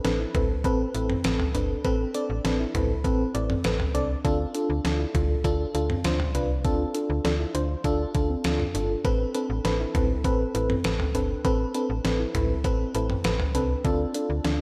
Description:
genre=synth-pop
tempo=100 BPM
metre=4/4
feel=straight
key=A minor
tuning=A4 = 439 Hz
part: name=FM electric piano with tremolo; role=accompaniment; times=0.0-14.6 s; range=C4 to D5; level=-30 LUFS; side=equal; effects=phaser
part: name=soft round pluck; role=arpeggios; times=0.0-14.6 s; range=C4 to F4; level=-36 LUFS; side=equal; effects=chorus, tape echo
part: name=slap-like FM bass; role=bass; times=0.0-14.6 s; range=G1 to D2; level=-31 LUFS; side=equal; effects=none
part: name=detuned 8-bit digital drum machine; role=drums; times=0.0-14.6 s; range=hi-hat, kick drum, snare drum, toms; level=-30 LUFS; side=equal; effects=overdrive
room=moderate lush hall reverb, RT60 1.6 s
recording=dreamy mix soaked in reverb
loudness=-26 LUFS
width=mono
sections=0.0-14.6 A section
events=none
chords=0.0 Amadd9; 4.2 Dm; 9.0 Amadd9; 13.8 Dm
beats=0.05 0.65 1.25 | 1.85 2.45 3.05 3.65 | 4.25 4.85 5.45 6.05 | 6.65 7.25 7.85 8.45 | 9.05 9.65 10.25 10.85 | 11.45 12.05 12.65 13.25 | 13.85 14.45

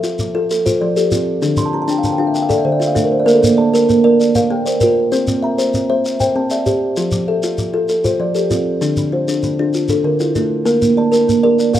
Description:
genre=southern african traditional, mbira-style interlocking cycle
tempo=130 BPM (dotted quarters)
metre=12/8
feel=straight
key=F major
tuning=A4 = 443 Hz
part: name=kalimba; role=arpeggios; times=0.0-11.8 s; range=D3 to G5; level=-16 LUFS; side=left 2 dB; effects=none
part: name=kalimba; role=arpeggios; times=0.0-11.8 s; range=D3 to C6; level=-17 LUFS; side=right 3 dB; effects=none
part: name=shekere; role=percussion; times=0.0-11.8 s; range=none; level=-24 LUFS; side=left 1 dB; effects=none
room=light reverb, studio reverb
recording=rough home demo mix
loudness=-13 LUFS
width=side -11 dB against mid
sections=0.0-11.8 A section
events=kalimba fill 1.4-3.3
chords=0.0 F; 1.4 Dm; 3.3 Bb; 5.1 C; 7.0 F; 8.8 Dm; 10.7 Bb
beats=0.04 0.50 0.96 | 1.43 1.89 2.35 2.81 | 3.27 3.74 4.20 4.66 | 5.12 5.59 6.05 6.51 | 6.97 7.43 7.90 8.36 | 8.82 9.28 9.74 10.20 | 10.66 11.12 11.59

